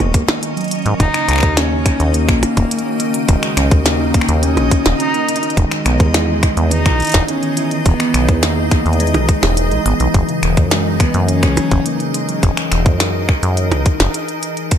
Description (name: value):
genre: IDM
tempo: 105 BPM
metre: 4/4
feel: straight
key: unclear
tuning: A4 = 438 Hz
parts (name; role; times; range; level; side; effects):
- dark cello; melody; 0.0-12.1 s; Ab3 to Eb4; -21 LUFS; left 2 dB; ping-pong delay
- deep acid bass; bass; 0.0-14.1 s; Eb1 to Ab2; -17 LUFS; equal; tube saturation
- glitchy drum kit; drums; 0.0-14.8 s; finger snaps, hi-hat, percussion blips, snare drum; -19 LUFS; equal; none
- backwards swelling texture; texture; 0.0-14.8 s; Db4 to Eb5; -25 LUFS; equal; built-in reverb, sidechain pumping
- harp-like synth pluck; arpeggios; 0.1-12.4 s; Db3 to E4; -23 LUFS; right 5 dB; chorus, digital delay
- electronic kick drum; drums; 0.1-14.8 s; none; -15 LUFS; equal; none
- icy glass pad; sustained chords; 1.8-14.8 s; Eb3 to D#5; -23 LUFS; left 3 dB; chorus, built-in reverb
room: little or no reverb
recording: none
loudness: -13 LUFS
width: side -9 dB against mid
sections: 0.0-14.8 A section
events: none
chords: 0.0 Ab7sus2; 1.0 Ebm7; 5.6 Emaj7; 10.1 Gb13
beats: 0.43 | 1.00 1.57 2.14 2.71 | 3.29 3.86 4.43 5.00 | 5.57 6.14 6.71 7.29 | 7.86 8.43 9.00 9.57 | 10.14 10.71 11.29 11.86 | 12.43 13.00 13.57 14.14 | 14.71